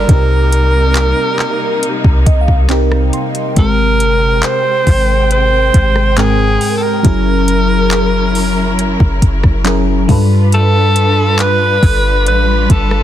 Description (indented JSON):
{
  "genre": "contemporary R&B",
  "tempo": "69 BPM",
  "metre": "4/4",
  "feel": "straight",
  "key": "Ab major",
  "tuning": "A4 = 440 Hz",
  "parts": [
    { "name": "clear alto saxophone", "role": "melody", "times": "0.0-13.0 s", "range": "Ab4 to C5", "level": "-15 LUFS", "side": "right 1 dB", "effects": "none" },
    { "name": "FM electric piano with soft pad layer", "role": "accompaniment", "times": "0.0-13.0 s", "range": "Ab2 to C6", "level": "-17 LUFS", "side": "left 1 dB", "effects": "chorus, phaser" },
    { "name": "muted studio string section", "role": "sustained chords", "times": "0.0-13.0 s", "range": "C3 to G5", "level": "-22 LUFS", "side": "left 1 dB", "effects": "none" },
    { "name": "clean 808-style bass", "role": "bass", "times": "0.0-13.0 s", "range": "Gb1 to G2", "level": "-13 LUFS", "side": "equal", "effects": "none" },
    { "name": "smooth R&B drum kit", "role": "drums", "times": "0.1-13.0 s", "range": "handclaps, hi-hat, kick drum, rim click", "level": "-14 LUFS", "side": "equal", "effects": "none" }
  ],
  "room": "digital ambience",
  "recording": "dense, heavily limited modern master",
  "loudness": "-10 LUFS",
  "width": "side -11 dB against mid",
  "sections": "0.0-13.0 A section",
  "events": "FM electric piano fill 1.8-3.6",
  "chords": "0.1 Cm7; 3.6 Abmaj7; 7.0 Gb7; 10.1 G7"
}